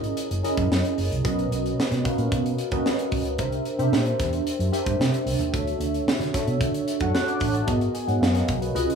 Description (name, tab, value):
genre	polished 1980s jazz-funk pop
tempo	112 BPM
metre	4/4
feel	straight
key	unclear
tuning	A4 = 440 Hz
part	mellow tine electric piano	accompaniment	0.0-8.9 s	B3 to F#6	-25 LUFS	right 1 dB	medium stereo tremolo, analog chorus
part	vintage muted fingered electric bass	bass	0.0-8.8 s	F#1 to D3	-26 LUFS	right 1 dB	none
part	crisp fusion drum kit	drums	0.0-8.9 s	hi-hat, kick drum, snare drum	-28 LUFS	equal	none
room	wet small room reverb, RT60 0.5 s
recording	small room ambience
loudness	-22 LUFS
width	side -6 dB against mid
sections	0.0-8.9 A section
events	none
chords	0.0 F#13; 1.2 Bmaj9; 3.4 C9; 5.5 Dmaj7; 7.7 G#m7